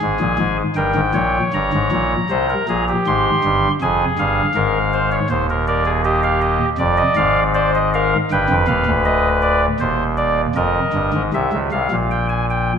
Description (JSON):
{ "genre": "classical, baroque-style 3-part fugue for pipe organ", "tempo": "80 BPM", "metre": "4/4", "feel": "straight", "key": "unclear", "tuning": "A4 = 441 Hz", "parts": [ { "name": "chamber organ, soft reed", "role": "solo", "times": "0.0-12.7 s", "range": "D1 to C6", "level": "-15 LUFS", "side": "equal", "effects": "none" } ], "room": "wet scoring stage reverb, RT60 1.8 s", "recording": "none", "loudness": "-15 LUFS", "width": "side -7 dB against mid", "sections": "0.0-11.3 A section; 11.3-12.8 B section", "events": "none", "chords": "0.0 N.C.; 0.8 Gdim; 2.3 C5; 3.8 Fm; 5.3 Cm/Eb (rootless); 6.8 Dm7b5/F; 8.3 G; 9.8 Cm/Eb; 11.3 C7" }